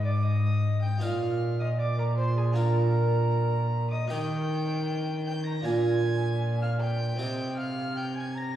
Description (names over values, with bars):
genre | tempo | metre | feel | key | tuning
classical, renaissance-style consort dance | 78 BPM | 4/4 | straight | unclear | A4 = 440 Hz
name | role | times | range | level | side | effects
tenor recorder | melody | 0.0-8.5 s | Ab4 to Bb5 | -36 LUFS | left 2 dB | none
warm violin | second line | 0.0-8.6 s | Ab5 to Bb6 | -36 LUFS | equal | none
harpsichord | accompaniment | 0.0-8.6 s | Ab2 to Cb5 | -33 LUFS | right 2 dB | none
warm cello | bass | 0.0-8.6 s | Ab2 to Eb3 | -27 LUFS | equal | none
tambourine | percussion | 1.0-7.6 s | none | -53 LUFS | left 1 dB | none
room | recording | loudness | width
wet recital hall reverb, RT60 1.6 s | heard from further back in the room, vinyl crackle, small room reverb | -25 LUFS | side -11 dB against mid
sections
0.0-8.6 A section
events
none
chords
0.0 Abm; 1.0 Bbsus4; 2.6 Bb; 4.1 Eb; 5.7 Bb; 7.2 Cm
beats
0.23 | 1.01 1.78 2.56 3.33 | 4.11 4.88 5.65 6.42 | 7.20 7.97